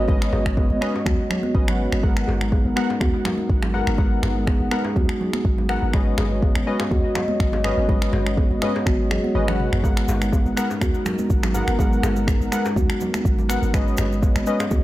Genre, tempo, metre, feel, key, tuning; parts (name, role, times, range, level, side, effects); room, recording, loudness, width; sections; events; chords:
afro house; 123 BPM; 4/4; swing 54% on 16ths; G# minor; A4 = 439 Hz
dark analog pad; sustained chords; 0.0-14.8 s; G#3 to D#5; -30 LUFS; right 1 dB; chorus, sidechain pumping
buzzing kalimba; arpeggios; 0.0-14.8 s; F#3 to G#4; -26 LUFS; equal; sidechain pumping, low-pass filter, dub echo
warm analog keys; stabs; 0.0-14.6 s; B3 to F#5; -28 LUFS; left 2 dB; chorus, sidechain pumping, dub echo
warm 808-style bass; bass; 0.0-14.8 s; G#1 to D#2; -25 LUFS; equal; sidechain pumping
electronic kick drum; drums; 0.1-14.8 s; -21 LUFS; equal
congas; percussion; 0.1-14.8 s; -30 LUFS; right 2 dB
djembe; percussion; 0.1-14.8 s; -32 LUFS; left 2 dB
afro-pop drum kit; drums; 0.2-14.7 s; finger snaps, toms; -30 LUFS; equal
cabasa; percussion; 9.8-14.8 s; -39 LUFS; right 4 dB
small room ambience; -18 LUFS; side -16 dB against mid
0.0-14.8 A section
filter sweep on kalimba 0.0-14.8; kick drops out 9.4-9.8; drum fill 9.4-9.8
0.0 Badd9/G#; 2.0 G#m9; 5.9 Badd9/G#; 9.8 G#m9; 13.7 Badd9/G#